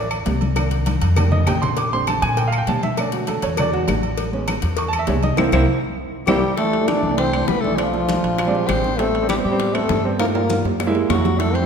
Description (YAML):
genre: Afro-Cuban jazz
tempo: 199 BPM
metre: 4/4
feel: straight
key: C major from 6.6 s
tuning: A4 = 439 Hz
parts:
  - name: warm baby grand piano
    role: accompaniment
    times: 0.0-11.7 s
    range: D3 to D6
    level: -22 LUFS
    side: right 3 dB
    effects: none
  - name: upright bass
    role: bass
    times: 0.0-11.7 s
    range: A1 to B2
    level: -23 LUFS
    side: left 1 dB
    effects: none
  - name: agogo bells and timbales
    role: percussion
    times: 0.1-11.7 s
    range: none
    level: -28 LUFS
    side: right 5 dB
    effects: none
  - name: claves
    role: percussion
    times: 0.1-11.2 s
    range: none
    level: -31 LUFS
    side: left 6 dB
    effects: none
  - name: congas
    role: percussion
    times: 0.1-11.7 s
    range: none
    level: -27 LUFS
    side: left 3 dB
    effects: none
  - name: cowbell and bongos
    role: percussion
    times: 0.3-11.5 s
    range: none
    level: -29 LUFS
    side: left 6 dB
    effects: none
  - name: growling trombone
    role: melody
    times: 6.3-11.7 s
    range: F3 to D4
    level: -22 LUFS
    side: equal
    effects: none
  - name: growling tenor saxophone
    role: second line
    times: 6.3-11.7 s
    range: F4 to D5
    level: -26 LUFS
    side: left 5 dB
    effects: none
room: wet concert hall reverb, RT60 2.1 s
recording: recorded in a church or concert hall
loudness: -17 LUFS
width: side -6 dB against mid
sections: 0.0-6.6 A section; 6.6-11.7 B section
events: grand piano solo 0.0-6.6; drum fill 0.9-1.8, 6.0-6.6, 10.2-11.4; band accent 5.4-6.6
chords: 0.0 D7(no3); 0.6 Cm9; 1.2 F13; 1.8 Bb69; 3.0 Bm7; 3.6 E9; 4.2 Amaj9; 5.4 C7; 6.6 C6; 7.8 Bm7b5; 8.4 Bb13; 9.0 Am9; 10.2 Gm7; 10.8 F#9